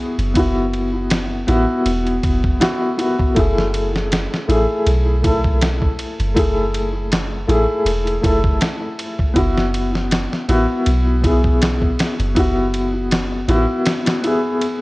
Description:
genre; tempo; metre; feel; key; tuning
trip hop; 80 BPM; 4/4; swing 54% on 16ths; unclear; A4 = 444 Hz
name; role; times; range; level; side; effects
dark upright piano; accompaniment; 0.0-14.8 s; A3 to A4; -19 LUFS; left 1 dB; tremolo, tape echo
soft 808-style bass; bass; 0.2-13.7 s; E1 to B1; -20 LUFS; equal; tube saturation
dusty soul sampler-style drum kit; drums; 0.2-14.8 s; kick drum, ride cymbal, snare drum; -21 LUFS; equal; none
room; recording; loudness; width
light reverb, digital ambience; worn, warbling old tape, cassette tape, warbly pitch drift; -15 LUFS; side -21 dB against mid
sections
0.0-14.8 A section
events
none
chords
0.0 Esus2

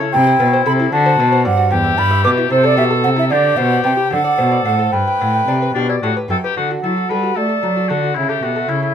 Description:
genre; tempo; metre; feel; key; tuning
classical, baroque-style sonata movement with continuo; 75 BPM (dotted quarters); 6/8; straight; G major; A4 = 440 Hz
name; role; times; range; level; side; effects
warm oboe; melody; 0.0-8.9 s; D4 to C#5; -20 LUFS; left 6 dB; none
lute; accompaniment; 0.0-8.9 s; E2 to G5; -21 LUFS; left 2 dB; none
bright baroque flute; second line; 0.1-8.9 s; C5 to D6; -17 LUFS; right 2 dB; none
rich cello; bass; 0.1-8.9 s; E2 to A3; -18 LUFS; equal; none
room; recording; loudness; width
light reverb; none; -13 LUFS; side -8 dB against mid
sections
0.0-6.6 A section; 6.6-8.9 A section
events
none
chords
0.1 Am7; 0.9 D7; 1.7 Em; 2.5 Am; 3.3 G; 4.1 D7; 4.9 G; 6.6 D; 8.2 A

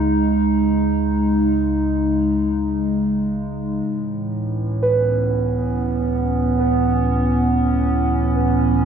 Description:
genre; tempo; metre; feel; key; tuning
ambient; free time; none; none; unclear; A4 = 440 Hz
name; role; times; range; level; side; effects
warbly tape-like pad; sustained chords; 0.0-8.8 s; A2 to D#4; -18 LUFS; right 1 dB; chorus, built-in reverb
warm sub bass; bass; 0.0-8.8 s; C#2; -25 LUFS; left 1 dB; none
muted felt-like synth keys; arpeggios; 4.8-8.8 s; B4; -24 LUFS; right 3 dB; chorus, tape echo
room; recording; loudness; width
wet echo chamber reverb, RT60 2.3 s; echo-heavy mix; -17 LUFS; side -7 dB against mid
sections
0.0-8.8 A section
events
none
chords
0.0 C#sus2; 3.9 Aadd9/C#

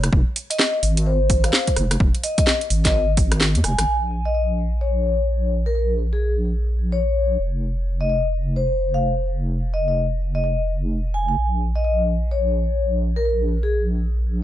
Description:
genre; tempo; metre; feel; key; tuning
UK garage, two-step garage; 128 BPM; 4/4; swing 62% on 16ths; Bb minor; A4 = 440 Hz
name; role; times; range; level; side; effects
deep soft wobble bass; bass; 0.0-14.4 s; F1 to F2; -21 LUFS; equal; chorus
house drum kit; drums; 0.0-3.9 s; hi-hat, rim click, snare drum; -21 LUFS; right 1 dB; studio reverb
electronic kick drum; drums; 0.1-3.3 s; none; -19 LUFS; equal; overdrive, studio reverb
vibraphone with soft mallets; melody; 0.5-13.8 s; Ab4 to Ab5; -24 LUFS; left 2 dB; dub echo
room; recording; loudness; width
little or no reverb; nothing above 10.9 kHz; -18 LUFS; side -12 dB against mid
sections
0.0-3.9 A section; 3.9-14.4 B section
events
none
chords
0.0 Fm; 3.9 Bbm; 7.4 F5; 11.4 Bbm

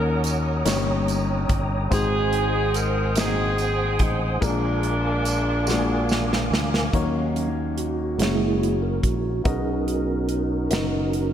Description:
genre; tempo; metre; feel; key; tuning
slow gospel; 48 BPM (dotted quarters); 6/8; straight; Eb minor; A4 = 439 Hz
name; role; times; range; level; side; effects
clear saxophone section; melody; 0.0-6.5 s; F3 to Bb4; -26 LUFS; right 1 dB; tape echo
warm concert grand piano; accompaniment; 0.0-11.3 s; G2 to Eb5; -28 LUFS; left 5 dB; slapback echo
mellow tonewheel organ; sustained chords; 0.0-11.3 s; Gb3 to Eb6; -27 LUFS; right 3 dB; fast rotary speaker, chorus vibrato
fingered electric bass; bass; 0.0-11.3 s; Gb1 to Eb2; -26 LUFS; equal; none
modern studio drum kit; drums; 0.2-11.3 s; hi-hat, kick drum, snare drum; -26 LUFS; right 1 dB; none
tambourine; percussion; 0.3-6.5 s; none; -37 LUFS; right 7 dB; none
room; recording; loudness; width
moderate lush hall reverb, RT60 2.8 s; big arena sound; -20 LUFS; side -10 dB against mid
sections
0.0-6.9 A section; 6.9-11.3 B section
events
drum fill 5.7-6.9; tonewheel organ solo 6.9-11.3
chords
0.0 Ebm7; 0.7 Eb7/G; 1.9 Ab7; 4.4 Bb7; 6.9 Ebm7; 8.2 Gb7; 9.5 Bmaj7

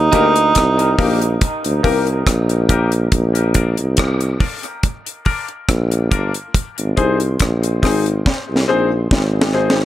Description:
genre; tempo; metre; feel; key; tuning
dub reggae; 70 BPM; 4/4; straight; Eb major; A4 = 440 Hz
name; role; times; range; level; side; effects
clear tenor saxophone; melody; 0.0-1.4 s; Eb4; -19 LUFS; right 3 dB; dub echo
warm tuba; bass; 0.0-9.8 s; G1 to Eb2; -17 LUFS; right 1 dB; none
warm upright piano; stabs; 0.1-9.7 s; Bb3 to C5; -21 LUFS; left 4 dB; high-pass filter, dub echo
deep reggae drum kit; drums; 0.1-9.8 s; hi-hat, kick drum, rim click, snare drum; -18 LUFS; equal; none
room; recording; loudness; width
light reverb, studio reverb; none; -14 LUFS; side -13 dB against mid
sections
0.0-9.8 A section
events
break 0.0-9.8; filter sweep on upright piano 0.0-6.5; drum fill 8.3-9.8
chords
0.0 Eb; 3.1 Bb; 6.5 Ab

